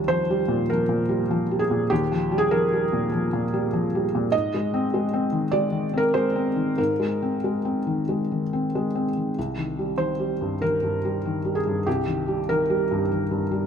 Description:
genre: neoclassical minimalist piano.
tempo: 91-102 BPM.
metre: 4/4.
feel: rubato.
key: Eb major.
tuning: A4 = 440 Hz.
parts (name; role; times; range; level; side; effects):
felt-muted upright piano; solo; 0.0-13.7 s; C2 to Eb5; -22 LUFS; equal; none.
room: light reverb.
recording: none.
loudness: -22 LUFS.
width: side -7 dB against mid.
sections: 0.0-13.7 A section.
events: none.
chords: 0.0 Ebadd9; 4.3 Abadd9; 9.4 Cm7.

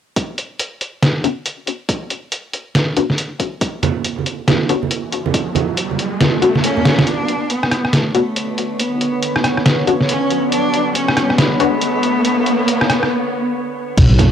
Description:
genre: deep dubstep.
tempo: 139 BPM.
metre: 4/4.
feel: swing 62% on 16ths, half-time.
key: B minor.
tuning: A4 = 440 Hz.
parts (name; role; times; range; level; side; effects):
electronic kick drum; drums; 0.2-7.0, 14.0-14.1 s; none; -18 LUFS; equal; overdrive, high-pass filter on kick, studio reverb, cassette tape, high-pass filter on room.
trip hop sampler-style drum kit; drums; 0.2-14.3 s; crash cymbal, hi-hat, rim click, snare drum; -17 LUFS; equal; studio reverb, cassette tape.
filtered dub chord stab; stabs; 1.2-11.7 s; B3 to F#4; -18 LUFS; left 6 dB; analog chorus, cassette tape, dub echo.
riser and sub drop; sound effects; 4.9-14.3 s; none; -23 LUFS; equal; none.
congas; percussion; 3.8-7.0, 14.1-14.3 s; none; -20 LUFS; right 7 dB; dub echo.
rich cello; melody; 6.6-14.3 s; A3 to D4; -20 LUFS; equal; cassette tape, dub echo.
bowed-like drone; sustained chords; 8.0-13.1 s; D3 to C#5; -21 LUFS; right 1 dB; built-in reverb, cassette tape.
deep soft wobble bass; bass; 7.1-14.3 s; B1; -20 LUFS; equal; chorus, high-pass filter.
room: wet booth ambience, RT60 0.2 s.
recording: home recording on cassette.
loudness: -15 LUFS.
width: side -9 dB against mid.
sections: 0.2-7.1 A section; 7.1-14.0 B section.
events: riser 4.9-7.1, 7.1-13.1; drum fill 6.9; build-up 7.1-14.0; filter sweep on synth drone 7.1-14.0; break 13.1-14.0; impact 14.0-14.3.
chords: 0.2 Bmadd9.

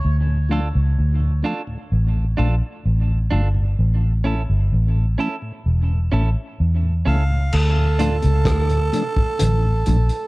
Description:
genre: dub reggae.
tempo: 64 BPM.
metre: 4/4.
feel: straight.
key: D harmonic minor.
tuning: A4 = 442 Hz.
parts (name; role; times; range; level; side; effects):
vintage muted fingered electric bass; bass; 0.0-10.1 s; E1 to E2; -17 LUFS; equal; none.
mellow tonewheel organ; accompaniment; 0.3-10.0 s; D2 to D4; -29 LUFS; left 1 dB; slow rotary speaker, dub echo.
clean electric guitar; accompaniment; 0.5-8.2 s; C#4 to A4; -30 LUFS; right 4 dB; dub echo.
melodica; melody; 7.1-7.5 s; F5; -36 LUFS; equal; dub echo.
growling tenor saxophone; second line; 7.5-10.3 s; A4; -24 LUFS; right 4 dB; dub echo.
vintage drum kit; drums; 7.5-10.3 s; crash cymbal, hi-hat, kick drum, rim click; -24 LUFS; equal; none.
electric guitar at the edge of break-up; arpeggios; 8.0-10.0 s; A2 to D3; -28 LUFS; left 4 dB; none.
room: small room ambience.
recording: dark, warm production.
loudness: -17 LUFS.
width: side -21 dB against mid.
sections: 0.0-7.5 A section; 7.5-10.3 B section.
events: none.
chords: 0.0 Dm; 3.8 A; 7.5 Dm.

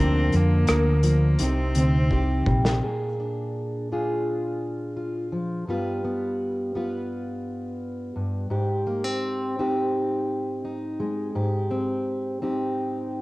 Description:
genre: acoustic folk-pop ballad.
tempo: 84 BPM.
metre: 4/4.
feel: straight.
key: unclear.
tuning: A4 = 440 Hz.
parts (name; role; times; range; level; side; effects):
rich cello; melody; 0.0-2.5 s; Bb3 to C4; -30 LUFS; equal; none.
fingerpicked plugged-in steel-string acoustic guitar; accompaniment; 0.0-13.2 s; G2 to B4; -25 LUFS; equal; cassette tape.
hollow-body short-scale fingered electric bass; bass; 0.0-2.8 s; Bb1 to F2; -21 LUFS; equal; none.
loose indie drum kit; drums; 0.3-2.8 s; hi-hat, kick drum, rim click, snare drum; -28 LUFS; equal; cassette tape.
room: wet spring reverb, RT60 2.0 s, small room ambience.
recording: home recording on cassette.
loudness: -23 LUFS.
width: side -20 dB against mid.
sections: 0.0-2.8 A section; 2.8-13.2 B section.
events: drum fill 2.1-2.8.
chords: 0.0 Bb/D; 1.4 Cm; 2.8 Bb7; 5.7 G7; 8.5 Abmaj7.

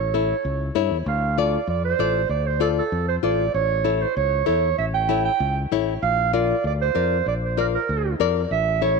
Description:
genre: latin, cumbia.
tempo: 194 BPM.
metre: 4/4.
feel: straight.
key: D harmonic minor.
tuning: A4 = 436 Hz.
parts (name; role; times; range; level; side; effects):
warm clarinet; melody; 0.0-9.0 s; A4 to G5; -23 LUFS; right 9 dB; none.
fingered electric bass; bass; 0.0-9.0 s; A1 to G2; -25 LUFS; left 1 dB; none.
nylon-string guitar; accompaniment; 0.1-9.0 s; E4 to D5; -25 LUFS; left 14 dB; none.
room: moderate plate reverb, RT60 3.0 s.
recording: 1960s-style stereo with parts hard left and right.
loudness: -20 LUFS.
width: side -4 dB against mid.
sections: 0.0-1.1 A section; 1.1-9.0 B section.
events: none.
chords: 0.0 A7; 1.1 Dm; 3.5 A7; 6.0 Bb.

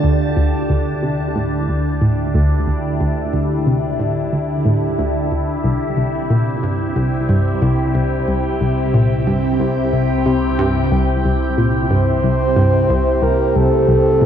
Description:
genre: ambient, sequencer-driven space music.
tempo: 91 BPM.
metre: 4/4.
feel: straight.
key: unclear.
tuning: A4 = 439 Hz.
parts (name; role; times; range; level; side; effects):
evolving wavetable pad; sustained chords; 0.0-14.3 s; C3 to A5; -18 LUFS; equal; phaser, built-in reverb.
analog pluck; riff; 0.0-14.3 s; C2 to C3; -18 LUFS; equal; chorus, analog delay.
analog drone; bass; 1.0-14.3 s; C2 to D2; -27 LUFS; equal; chorus.
breathy flute-like synth lead; melody; 11.9-14.3 s; A4 to C5; -18 LUFS; equal; chorus.
room: moderate plate reverb, RT60 3.2 s.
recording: dark, warm production.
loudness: -15 LUFS.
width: side -9 dB against mid.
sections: 0.0-14.3 A section.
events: fade-in on synth drone 0.0-14.3; filter sweep on synth arpeggio sound 0.0-14.3.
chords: 0.0 D5; 5.6 C.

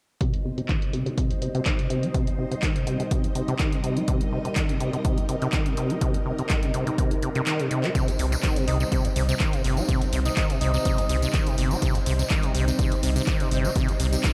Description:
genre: acid house.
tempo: 124 BPM.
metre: 4/4.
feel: swing 53% on 16ths.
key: C minor pentatonic.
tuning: A4 = 440 Hz.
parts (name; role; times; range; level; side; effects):
string machine, full ensemble; sustained chords; 0.2-14.3 s; G3 to Eb5; -34 LUFS; equal; phaser, ensemble chorus, sidechain pumping.
acid bass, saw; riff; 0.2-14.3 s; C2 to G3; -30 LUFS; equal; tube saturation.
electronic kick drum; drums; 0.2-14.3 s; none; -28 LUFS; equal; none.
punchy analog drum machine; drums; 0.2-14.3 s; handclaps, hi-hat; -35 LUFS; equal; low-pass filter on hats, low-pass filter on snare, low-pass filter on room.
tambourine; percussion; 8.0-14.3 s; none; -40 LUFS; equal; none.
round analog bass; bass; 8.2-14.2 s; G1 to C2; -27 LUFS; equal; sidechain pumping.
bright alto saxophone; melody; 8.7-11.3 s; Eb4; -36 LUFS; equal; tape echo.
room: moderate lush hall reverb, RT60 1.9 s, digital ambience.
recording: dreamy mix soaked in reverb.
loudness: -25 LUFS.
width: mono.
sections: 0.2-8.0 A section; 8.0-14.3 B section.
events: filter sweep on acid bass 0.2-8.0; kick drops out 7.5-8.0; drum fill 7.5-8.0.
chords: 0.2 Cm.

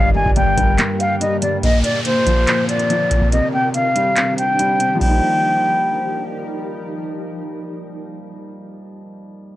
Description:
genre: hip hop, trap.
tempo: 142 BPM.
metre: 4/4.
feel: half-time.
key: Eb major.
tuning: A4 = 438 Hz.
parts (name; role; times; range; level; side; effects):
breathy concert flute; melody; 0.0-6.2 s; C5 to Ab5; -18 LUFS; equal; low-pass filter, analog delay.
gliding portamento lead; second line; 0.0-1.2 s; Bb4 to G5; -31 LUFS; left 2 dB; chorus, analog delay.
dark grand piano; accompaniment; 0.0-9.6 s; G2 to Eb4; -23 LUFS; left 1 dB; low-pass filter.
granular cloud pad; sustained chords; 0.0-8.3 s; D3 to C5; -29 LUFS; right 1 dB; built-in reverb.
hard-hitting 808-style bass; bass; 0.0-0.8 s; G1; -21 LUFS; equal; none.
booming analog drum machine; drums; 0.3-5.2 s; crash cymbal, handclaps, hi-hat, kick drum; -18 LUFS; equal; none.
downlifter; sound effects; 1.6-5.0 s; none; -29 LUFS; equal; none.
room: little or no reverb.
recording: dry, gritty hardware recording, transformer saturation, cassette tape.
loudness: -15 LUFS.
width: side -15 dB against mid.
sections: 0.0-1.6 A section; 1.6-5.0 B section; 5.0-8.4 C section.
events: break 0.8-1.6; kick muted 3.3-5.0.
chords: 0.0 Gm; 1.6 Bbadd9; 3.3 Cmadd9; 5.0 Ebadd9.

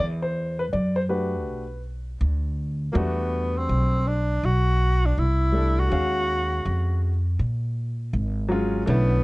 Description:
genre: hip hop, jazz-hop.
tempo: 81 BPM.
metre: 4/4.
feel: swing 65% on 16ths.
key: unclear.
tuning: A4 = 441 Hz.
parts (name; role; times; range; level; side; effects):
warm grand piano; accompaniment; 0.0-9.2 s; D3 to E#5; -27 LUFS; left 1 dB; none.
upright bass; bass; 0.0-9.2 s; G#1 to A#2; -23 LUFS; equal; none.
breathy tenor saxophone; melody; 2.9-9.2 s; A#3 to F#4; -26 LUFS; equal; none.
room: light reverb.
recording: dark, warm production, nothing above 10.5 kHz.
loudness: -22 LUFS.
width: side -22 dB against mid.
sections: 0.0-3.0 A section; 3.0-9.2 B section.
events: grand piano solo 0.0-3.0.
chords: 0.0 Em11; 5.9 D#m11.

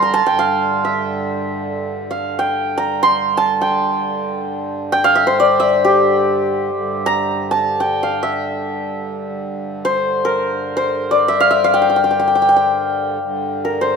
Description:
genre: indian classical, Hindustani.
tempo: free time.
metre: none.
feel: none.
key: G raga bageshri.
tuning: A4 = 440 Hz.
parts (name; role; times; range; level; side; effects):
santur; melody; 0.0-14.0 s; G4 to C6; -15 LUFS; equal; none.
pedal harmonium; drone; 0.0-14.0 s; G2 to D3; -25 LUFS; right 3 dB; none.
room: moderate scoring stage reverb, RT60 1.5 s.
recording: minimal, uncompressed stereo recording.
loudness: -15 LUFS.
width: side -5 dB against mid.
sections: 0.0-6.7 A section; 6.7-14.0 A section.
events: none.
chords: none.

